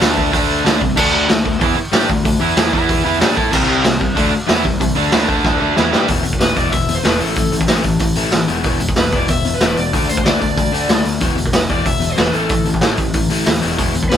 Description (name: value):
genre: punk rock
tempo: 187 BPM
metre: 4/4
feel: straight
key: E minor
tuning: A4 = 439 Hz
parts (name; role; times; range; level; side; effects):
- overdriven electric guitar; riff; 0.0-14.2 s; E2 to A4; -19 LUFS; left 6 dB; none
- overdriven semi-hollow guitar; riff; 0.0-6.1 s; C3 to A4; -19 LUFS; right 8 dB; none
- fuzz picked electric bass; bass; 0.0-14.2 s; E1 to A2; -24 LUFS; equal; overdrive
- raw garage drum kit; drums; 0.0-14.2 s; crash cymbal, hi-hat, kick drum, snare drum; -16 LUFS; right 1 dB; none
- lead guitar through a small cranked amp; melody; 6.4-14.2 s; A4 to E5; -21 LUFS; left 1 dB; overdrive
room: light reverb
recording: band playing live in one room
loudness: -13 LUFS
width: side -9 dB against mid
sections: 0.0-6.1 A section; 6.1-14.2 B section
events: drum fill 5.4-6.1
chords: 0.0 D5; 0.6 C5; 1.0 D5; 2.7 E5; 3.0 D5; 3.5 C5; 5.3 D5; 5.6 G69/D; 6.1 E5; 7.2 A5; 8.5 E5; 9.9 D5; 11.2 E5; 12.3 A5; 13.6 E5